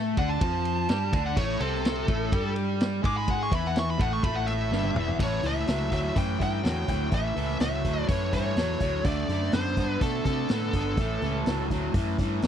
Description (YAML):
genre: blues rock power trio and southern rock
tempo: 125 BPM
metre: 4/4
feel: straight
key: A mixolydian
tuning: A4 = 440 Hz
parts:
  - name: distorted electric guitar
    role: riff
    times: 0.0-12.5 s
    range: E2 to A4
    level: -29 LUFS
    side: equal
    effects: distortion
  - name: vintage muted fingered electric bass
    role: bass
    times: 0.0-12.5 s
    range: E1 to C3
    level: -30 LUFS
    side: equal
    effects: none
  - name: biting lead guitar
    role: melody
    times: 0.2-11.7 s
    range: A4 to D6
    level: -31 LUFS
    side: equal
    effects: overdrive
  - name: vintage drum kit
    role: drums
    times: 0.2-12.5 s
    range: crash cymbal, hi-hat, kick drum, ride cymbal, snare drum, toms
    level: -29 LUFS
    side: equal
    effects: none
room: light reverb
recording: dry, close 1970s-style studio recording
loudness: -24 LUFS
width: side -9 dB against mid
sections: 0.0-5.2 A section; 5.2-12.5 B section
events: lead electric guitar solo 0.0-5.2; drum fill 4.7-5.2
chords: 0.0 D5; 1.4 Am; 2.3 G#maj7(no3)/G; 3.3 A5; 4.2 Emadd11; 5.2 A7; 9.0 D7; 11.0 A7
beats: 0.41 0.89 | 1.37 1.85 2.33 2.80 | 3.28 3.76 4.24 4.72 | 5.20 5.68 6.16 6.64 | 7.12 7.60 8.08 8.56 | 9.04 9.53 10.01 10.49 | 10.97 11.46 11.94 12.42